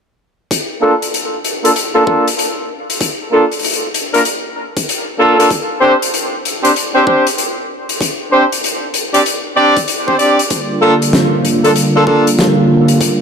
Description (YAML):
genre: glitch hop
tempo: 96 BPM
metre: 4/4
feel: swing 63% on 16ths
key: unclear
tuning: A4 = 438 Hz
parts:
  - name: electronic kick drum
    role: drums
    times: 0.5-13.2 s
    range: none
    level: -20 LUFS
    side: equal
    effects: overdrive, high-pass filter on kick, high-pass filter on room
  - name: oversized low-tuned drum kit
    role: drums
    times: 0.5-13.2 s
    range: hi-hat, snare drum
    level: -18 LUFS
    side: left 2 dB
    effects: none
  - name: brilliant horn section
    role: stabs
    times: 0.8-12.3 s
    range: Bb3 to D5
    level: -13 LUFS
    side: equal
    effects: sidechain pumping, low-pass filter, dub echo
  - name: warm analog pad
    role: sustained chords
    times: 10.5-13.2 s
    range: D3 to F4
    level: -12 LUFS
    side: right 1 dB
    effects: chorus, sidechain pumping
room: moderate plate reverb, RT60 2.6 s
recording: none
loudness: -11 LUFS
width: side -6 dB against mid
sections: 0.5-13.2 A section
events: filter sweep on horn section 0.5-13.2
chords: 0.5 Bbmaj7; 5.5 Csus2; 10.5 Gm7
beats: | 0.51 1.13 1.76 2.38 | 3.01 3.63 4.26 4.88 | 5.51 6.13 6.76 7.38 | 8.01 8.63 9.26 9.88 | 10.51 11.13 11.76 12.38 | 13.01